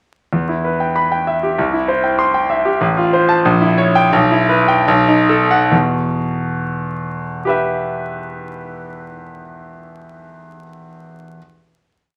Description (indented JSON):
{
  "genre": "classical, virtuoso piano study",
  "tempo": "69-98 BPM",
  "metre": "2/4",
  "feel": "rubato",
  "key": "E minor",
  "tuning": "A4 = 440 Hz",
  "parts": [
    { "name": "bright concert grand piano", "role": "solo", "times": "0.3-11.4 s", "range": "A1 to C6", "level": "-16 LUFS", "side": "equal", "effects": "none" }
  ],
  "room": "moderate large studio reverb, RT60 1.1 s",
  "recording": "vinyl crackle",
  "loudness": "-16 LUFS",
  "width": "mono",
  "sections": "0.3-5.7 A section; 5.7-9.2 final chord",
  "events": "slowing down 2.2-5.7",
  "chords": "0.3 Em; 1.6 C; 2.8 F/A; 3.4 A#dim7; 4.1 Em/B; 4.9 B7; 5.7 Em",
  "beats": "| 0.33 0.96 | 1.58 2.19 | 2.81 3.45 | 4.13 4.87 | 5.72 6.58 | 7.45 8.30"
}